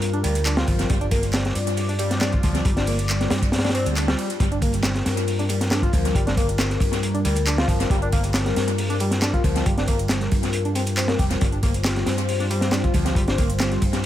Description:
breakbeat, breaks; 137 BPM; 4/4; straight; G minor; A4 = 440 Hz
dark analog pad; sustained chords; 0.0-14.1 s; G3 to D5; -28 LUFS; left 2 dB; chorus, vintage 12-bit sampler grit, sidechain pumping
picked electric bass; bass; 0.0-14.1 s; F1 to G2; -24 LUFS; equal
crunchy breakbeat drum kit; drums; 0.0-14.1 s; hi-hat, kick drum, snare drum; -23 LUFS; equal; dub echo
garage drum kit; drums; 0.0-14.1 s; handclaps, hi-hat, ride cymbal; -31 LUFS; right 1 dB; overdrive, dub echo
overdriven synth lead; riff; 0.1-13.5 s; F3 to G4; -29 LUFS; equal; chorus, tube saturation, dub echo
light reverb, small room ambience; echo-heavy mix; -19 LUFS; side -12 dB against mid
0.0-4.4 A section; 4.4-14.1 A section
drop 0.0-4.4, 4.4-14.1
0.0 Gm7

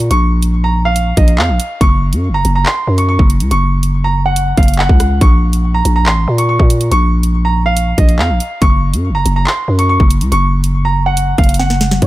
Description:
hip hop, drill; 141 BPM; 4/4; half-time; A4 = 439 Hz
bright concert grand piano; melody; 0.0-12.1 s; Db5 to Db6; -17 LUFS; right 2 dB; low-pass filter, ping-pong delay
growling 808-style bass; bass; 0.0-12.1 s; Gb1 to Bb2; -13 LUFS; equal
drill drum kit; drums; 0.0-12.1 s; handclaps, hi-hat, kick drum, rim click, snare drum; -13 LUFS; equal
digital ambience; -10 LUFS; side -16 dB against mid
0.0-12.0 A section
drum fill 11.6-12.0
0.0 Bbm; 1.8 Gb5; 5.2 Bbm; 8.6 Gb5

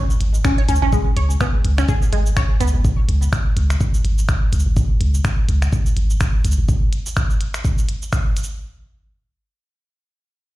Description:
minimal techno; 125 BPM; 4/4; swing 57% on 16ths; A4 = 440 Hz
resonant blip pluck; riff; 0.0-2.6 s; G#3 to C#5; -24 LUFS; right 1 dB; phaser, sidechain pumping, digital delay
minimal click drum kit; drums; 0.1-8.5 s; finger snaps, hi-hat, shaker; -28 LUFS; equal
punchy sub bass; bass; 0.2-6.7 s; G#1 to C#2; -17 LUFS; equal; tube saturation, sidechain pumping
electronic kick drum; drums; 0.4-8.2 s; -18 LUFS; equal
little or no reverb; played on a big sound system in a bare room, large studio reverb; -16 LUFS; side -17 dB against mid
0.0-8.6 A section
drop 0.0-8.6
0.0 C#5

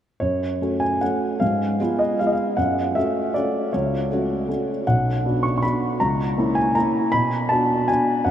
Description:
classical, piano waltz; 147-168 BPM; 3/4; rubato; F# minor; A4 = 435 Hz
warm grand piano; solo; 0.2-8.3 s; B1 to C#6; -19 LUFS; equal
wet huge ambient reverb, RT60 7.9 s; in a vast, echoing space; -19 LUFS; side -10 dB against mid
0.2-8.3 A section
0.2 F#m; 1.4 Fdim/Ab; 2.6 F#m; 4.9 Bm; 6.0 A#dim/C#; 7.1 Bm

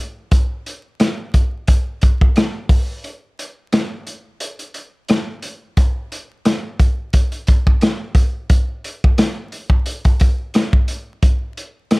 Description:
hip hop; 88 BPM; 4/4; swing 56% on 16ths
crunchy breakbeat drum kit; drums; 0.3-12.0 s; hi-hat, kick drum, rim click, snare drum; -15 LUFS; equal
little or no reverb; vinyl crackle; -15 LUFS; side -26 dB against mid
0.0-5.8 A section; 5.8-12.0 B section
break 3.0-5.8

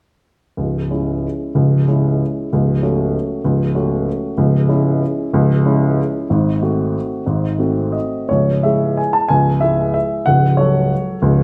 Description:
classical, piano waltz; 158-202 BPM; 3/4; rubato; C# minor; A4 = 442 Hz
warm upright piano; solo; 0.6-11.4 s; C#1 to A5; -17 LUFS; equal
moderate recital hall reverb, RT60 1.6 s; -17 LUFS; mono
0.6-8.3 A section; 8.3-11.4 B section
0.6 C#m; 2.5 F#m/C#; 4.4 C#m; 6.3 G#7b9; 8.3 C#m; 10.3 F#m/C#

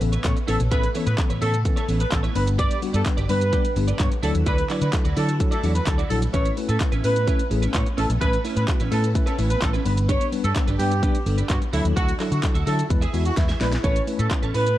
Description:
dance-pop; 128 BPM; 4/4; straight; A major; A4 = 440 Hz
tine electric piano; accompaniment; 0.0-14.7 s; E3 to D5; -28 LUFS; left 2 dB; medium stereo tremolo, sidechain pumping
phased string machine; sustained chords; 0.0-14.8 s; C#3 to B4; -34 LUFS; left 1 dB; ensemble chorus, phaser, sidechain pumping
twelve-string electric guitar; riff; 0.0-14.7 s; C#4 to E5; -33 LUFS; right 5 dB; ensemble chorus
vintage muted fingered electric bass; bass; 0.0-14.8 s; G1 to D3; -23 LUFS; equal; sidechain pumping
pop drum kit; drums; 0.0-14.8 s; handclaps, hi-hat, kick drum, shaker, snare drum; -24 LUFS; equal
impact; sound effects; 0.0-0.7 s; barely audible
mellow horn section; melody; 0.2-14.8 s; E4 to D5; -27 LUFS; right 1 dB; sidechain pumping
group handclap; percussion; 0.2-14.4 s; -40 LUFS; left 4 dB
digital ambience; dark, warm production; -19 LUFS; side -14 dB against mid
0.0-13.8 A section
drop 0.0-13.8; impact 0.0-0.7; drum fill 13.4-13.8
0.0 Aadd9; 2.4 G; 4.2 Dadd9; 6.3 Aadd9; 9.9 G; 11.7 Dadd9; 12.9 E; 13.8 Aadd9

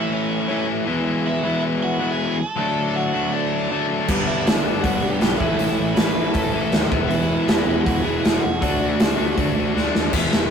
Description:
punk rock; 159 BPM; 4/4; straight; A4 = 439 Hz
biting lead guitar; melody; 0.0-9.7 s; C#4 to B5; -27 LUFS; right 4 dB; overdrive
cranked stack guitar; riff; 0.0-10.5 s; G2 to F#4; -23 LUFS; left 5 dB; overdrive
sludgy distorted guitar; riff; 0.0-10.5 s; E2 to D4; -27 LUFS; right 5 dB; overdrive
overdriven electric guitar; riff; 4.1-10.5 s; E2 to D4; -30 LUFS; right 2 dB
fuzz picked electric bass; bass; 4.1-10.5 s; E1 to D3; -29 LUFS; equal; overdrive
big rock drum kit; drums; 4.1-10.4 s; crash cymbal, hi-hat, kick drum, snare drum; -21 LUFS; equal
light reverb; rough rehearsal-room recording, warm saturation; -18 LUFS; side -7 dB against mid
0.0-10.1 A section
half time 0.0-10.1; drum fill 9.8-10.1
0.0 A; 0.9 E; 2.6 D; 4.1 G; 5.4 A; 6.9 E; 8.6 D

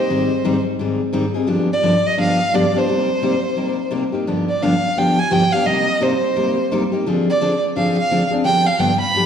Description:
jazz; 172 BPM; 4/4; swing 61% on 8ths; A4 = 440 Hz
warm violin; melody; 0.0-9.3 s; C5 to B5; -19 LUFS; right 2 dB
picked steel-string acoustic guitar; accompaniment; 0.0-9.3 s; G2 to Ab4; -18 LUFS; left 2 dB
wet scoring stage reverb, RT60 1.6 s; recorded in a church or concert hall; -16 LUFS; side -8 dB against mid
0.0-4.3 A section; 4.3-9.3 B section
0.1 Abmaj7; 1.5 G7; 2.9 Cm7; 4.3 G7; 5.7 Cm7; 7.1 Dm7b5; 8.4 G7

